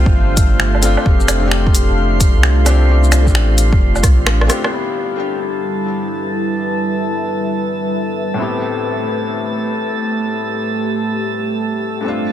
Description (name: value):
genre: future garage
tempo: 131 BPM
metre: 4/4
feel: swing 65% on 16ths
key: E phrygian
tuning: A4 = 439 Hz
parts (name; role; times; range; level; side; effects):
- felt-muted upright piano; accompaniment; 0.0-12.3 s; G2 to G4; -23 LUFS; left 5 dB; sidechain pumping, low-pass filter, digital delay
- dark analog pad; sustained chords; 0.0-12.3 s; G3 to F5; -21 LUFS; right 2 dB; chorus, sidechain pumping
- soft dub sub bass; bass; 0.0-4.5 s; F1 to C2; -14 LUFS; equal; sidechain pumping
- drifting glass-harmonics texture; texture; 0.0-12.3 s; F4 to A5; -24 LUFS; left 1 dB; chorus, built-in reverb
- electronic kick drum; drums; 0.1-4.2 s; none; -13 LUFS; equal; overdrive, studio reverb
- organic electronic drum kit; drums; 0.4-4.7 s; finger snaps, hi-hat, rim click, shaker, woodblock; -19 LUFS; right 1 dB; overdrive, low-pass filter on perc, studio reverb, low-pass filter on hats, soft clipping on snare, low-pass filter on snare
room: light reverb, digital ambience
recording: dense, heavily limited modern master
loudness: -14 LUFS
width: side -11 dB against mid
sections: 0.0-4.7 A section; 4.7-12.3 B section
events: drum fill 4.0-4.7; band accent 4.6; filter sweep on felt piano 4.7-12.3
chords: 0.0 G9sus4; 1.1 F6; 4.7 Em7; 8.4 Am9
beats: 0.14 0.60 | 1.06 1.51 1.97 2.43 | 2.89 3.35 3.80 4.26 | 4.72 5.18 5.64 6.09 | 6.55 7.01 7.47 7.93 | 8.38 8.84 9.30 9.76 | 10.22 10.67 11.13 11.59 | 12.05